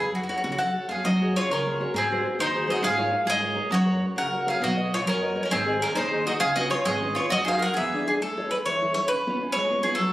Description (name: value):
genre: italian folk, Italian serenade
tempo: 134 BPM (dotted quarters)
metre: 6/8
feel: straight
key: F# major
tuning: A4 = 440 Hz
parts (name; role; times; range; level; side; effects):
- bowl-back mandolin; melody; 0.0-10.1 s; F#4 to F#5; -25 LUFS; equal; none
- nylon-string guitar; accompaniment; 0.0-10.1 s; C#3 to D#5; -29 LUFS; left 1 dB; none
- upright bass; bass; 0.0-8.1 s; G#1 to F#3; -30 LUFS; equal; none
- bowl-back mandolin; second line; 0.6-8.1 s; B#3 to A#4; -29 LUFS; right 1 dB; none
room: wet recital hall reverb, RT60 1.4 s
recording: recorded on a phone in the room, club reverb, compression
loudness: -22 LUFS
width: side -15 dB against mid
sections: 0.0-1.0 A section; 1.0-8.2 B section; 8.2-10.1 C section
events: none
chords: 0.1 F#m; 1.0 F#sus2; 1.9 G#7; 2.8 C#6/G#; 3.7 F#; 4.6 Badd9; 5.5 G#; 6.4 C#7; 7.3 F#6; 7.8 E7; 8.2 A; 9.1 C#7